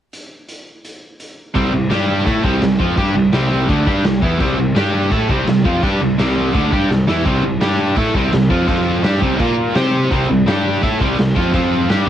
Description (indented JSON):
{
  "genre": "punk rock",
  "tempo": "168 BPM",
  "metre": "4/4",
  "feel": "straight",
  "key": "C major",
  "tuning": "A4 = 440 Hz",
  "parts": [
    { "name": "raw garage drum kit", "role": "drums", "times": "0.1-12.0 s", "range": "crash cymbal, hi-hat, kick drum, snare drum", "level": "-20 LUFS", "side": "equal", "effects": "cassette tape" },
    { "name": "distorted electric guitar", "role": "riff", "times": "1.5-12.1 s", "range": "C3 to C5", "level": "-20 LUFS", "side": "right 8 dB", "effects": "overdrive, cassette tape" },
    { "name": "distorted electric guitar", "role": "riff", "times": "1.5-12.1 s", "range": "C3 to C5", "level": "-20 LUFS", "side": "left 1 dB", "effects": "distortion, cassette tape" },
    { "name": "raw garage guitar", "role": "riff", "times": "1.5-12.1 s", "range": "C3 to C5", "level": "-24 LUFS", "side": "left 9 dB", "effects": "overdrive, cassette tape" },
    { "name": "fuzz picked electric bass", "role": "bass", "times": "1.6-12.1 s", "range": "C2 to C3", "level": "-20 LUFS", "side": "left 1 dB", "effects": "overdrive" }
  ],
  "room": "little or no reverb",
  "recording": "home recording on cassette",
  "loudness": "-14 LUFS",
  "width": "side -10 dB against mid",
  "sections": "0.1-1.5 A section; 1.5-12.1 B section",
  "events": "drum fill 6.9-7.3",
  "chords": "0.1 N.C.; 1.5 C5; 1.9 G5; 2.3 C; 4.8 G5; 5.1 C; 7.6 G5; 8.0 C; 8.7 F5; 9.0 C5; 9.4 Bb5; 9.8 C5; 10.5 G5; 10.8 C; 11.5 F5",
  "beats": "| 0.12 0.48 0.83 1.19 | 1.55 1.91 2.26 2.62 | 2.98 3.33 3.69 4.04 | 4.40 4.76 5.12 5.47 | 5.83 6.18 6.54 6.90 | 7.25 7.61 7.97 8.32 | 8.68 9.04 9.39 9.75 | 10.11 10.46 10.82 11.18 | 11.53 11.89"
}